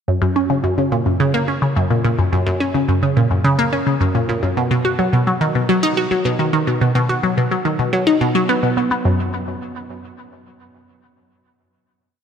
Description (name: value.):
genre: ambient.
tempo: 107 BPM.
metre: 4/4.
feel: straight.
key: F# major.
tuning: A4 = 440 Hz.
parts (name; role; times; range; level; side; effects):
resonant blip pluck; solo; 0.1-9.3 s; F#2 to F#4; -15 LUFS; equal; phaser, ping-pong delay.
room: wet lush hall reverb, RT60 2.6 s.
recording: none.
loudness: -15 LUFS.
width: side -7 dB against mid.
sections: 0.1-9.1 A section; 9.1-11.3 final chord.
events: none.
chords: none.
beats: | 0.08 0.64 1.20 1.76 | 2.32 2.88 3.44 4.01 | 4.57 5.13 5.69 6.25 | 6.81 7.37 7.93 8.49 | 9.05.